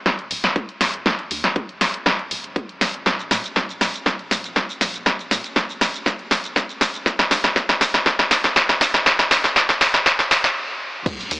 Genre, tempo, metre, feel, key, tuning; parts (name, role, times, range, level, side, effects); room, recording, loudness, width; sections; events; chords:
progressive house; 120 BPM; 4/4; straight; A4 = 440 Hz
tight sequencer bass; bass; 0.1-11.4 s; Eb1 to Bb2; -38 LUFS; equal; tube saturation, sidechain pumping
deep house drum kit; drums; 0.1-11.4 s; crash cymbal, hi-hat, ride cymbal, shaker, snare drum; -17 LUFS; equal; sidechain pumping on hats, sidechain pumping on perc, sidechain pumping on cymbals
electronic kick drum; drums; 0.1-11.2 s; -26 LUFS; equal; high-pass filter on kick, high-pass filter on room
moderate huge ambient reverb, RT60 8.1 s; high-pass filter, AM radio sound; -17 LUFS; side -24 dB against mid
0.0-11.1 A section
build-up 0.0-11.1; drum fill 0.0-10.6; stop 10.6-11.1